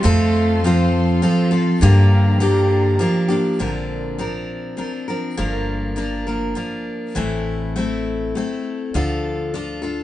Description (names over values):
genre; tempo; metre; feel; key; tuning
acoustic folk duo or small band; 101 BPM; 3/4; straight; unclear; A4 = 440 Hz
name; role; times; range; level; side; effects
dark cello; second line; 0.0-3.6 s; D3 to A3; -20 LUFS; right 2 dB; none
picked steel-string acoustic guitar; accompaniment; 0.0-10.0 s; G2 to Bb4; -20 LUFS; left 2 dB; none
warm chamber string section; sustained chords; 0.0-3.6 s; G4 to C6; -30 LUFS; left 2 dB; none
upright bass; bass; 0.0-10.0 s; G1 to G2; -20 LUFS; equal; none
room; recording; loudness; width
wet studio reverb, RT60 0.9 s; heard from further back in the room, nothing above 10.5 kHz; -17 LUFS; side -14 dB against mid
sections
0.0-3.6 A section; 3.6-10.0 B section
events
none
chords
0.0 F; 1.8 Gm7; 3.6 Bbadd9; 5.4 Gm7; 7.2 Am; 8.9 Dm